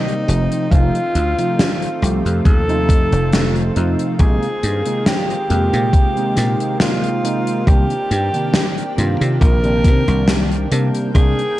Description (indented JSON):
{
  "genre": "vaporwave",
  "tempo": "69 BPM",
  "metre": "4/4",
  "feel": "swing 53% on 16ths",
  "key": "unclear",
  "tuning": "A4 = 441 Hz",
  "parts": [
    { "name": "clear alto saxophone", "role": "melody", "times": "0.0-11.6 s", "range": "Eb4 to Bb4", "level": "-22 LUFS", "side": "equal", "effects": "vintage 12-bit sampler grit, tape echo" },
    { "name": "tine electric piano", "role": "accompaniment", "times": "0.0-11.4 s", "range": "C3 to D5", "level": "-21 LUFS", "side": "equal", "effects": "analog chorus, analog delay" },
    { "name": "lush unison pad", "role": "sustained chords", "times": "0.0-11.6 s", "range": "Eb3 to G5", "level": "-28 LUFS", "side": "equal", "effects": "chorus" },
    { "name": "gated 80s drum kit", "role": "drums", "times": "0.1-11.5 s", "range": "hi-hat, snare drum", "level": "-19 LUFS", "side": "equal", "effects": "vintage 12-bit sampler grit, gated reverb" },
    { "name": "dry thumbed slap bass", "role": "bass", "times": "0.3-11.3 s", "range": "F1 to C3", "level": "-18 LUFS", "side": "equal", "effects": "none" },
    { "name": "electronic kick drum", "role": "drums", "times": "0.7-11.3 s", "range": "none", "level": "-13 LUFS", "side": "equal", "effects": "vintage 12-bit sampler grit" }
  ],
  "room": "light reverb, studio reverb",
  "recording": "none",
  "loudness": "-14 LUFS",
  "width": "side -15 dB against mid",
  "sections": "0.0-11.6 A section",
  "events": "none",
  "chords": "0.3 F7; 4.2 Bb9sus4; 7.7 Cm9; 10.7 Abmaj9#11/C",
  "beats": "| 0.72 1.59 2.46 3.33 | 4.20 5.07 5.93 6.80 | 7.67 8.54 9.41 10.28 | 11.15"
}